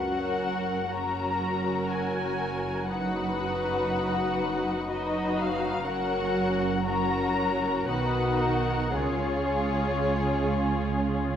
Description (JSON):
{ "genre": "classical, slow romantic movement for string orchestra", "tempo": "53-62 BPM", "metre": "3/4", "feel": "rubato", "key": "F# major", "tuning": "A4 = 441 Hz", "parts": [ { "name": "muted symphonic violin section", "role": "melody", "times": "0.0-11.2 s", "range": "C#5 to A#5", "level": "-32 LUFS", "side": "left 4 dB", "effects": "none" }, { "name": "muted symphonic violin section", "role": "second line", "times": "0.0-11.4 s", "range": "E#4 to B4", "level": "-31 LUFS", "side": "left 2 dB", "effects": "none" }, { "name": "muted symphonic viola section", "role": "accompaniment", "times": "0.0-11.4 s", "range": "D#3 to D#4", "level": "-30 LUFS", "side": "right 1 dB", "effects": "none" }, { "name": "muted studio cello section", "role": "bass", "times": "0.0-11.4 s", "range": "F#2 to C#3", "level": "-34 LUFS", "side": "right 4 dB", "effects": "none" }, { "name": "muted studio double bass section", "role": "bass", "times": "0.0-11.4 s", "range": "F#1 to C#2", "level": "-34 LUFS", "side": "right 3 dB", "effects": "none" } ], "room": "wet scoring stage reverb, RT60 1.8 s", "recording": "none", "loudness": "-25 LUFS", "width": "side -9 dB against mid", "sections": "0.0-11.4 A section", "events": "none", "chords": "0.0 F#; 2.9 B/F#; 5.9 F#; 7.9 B; 9.0 C#" }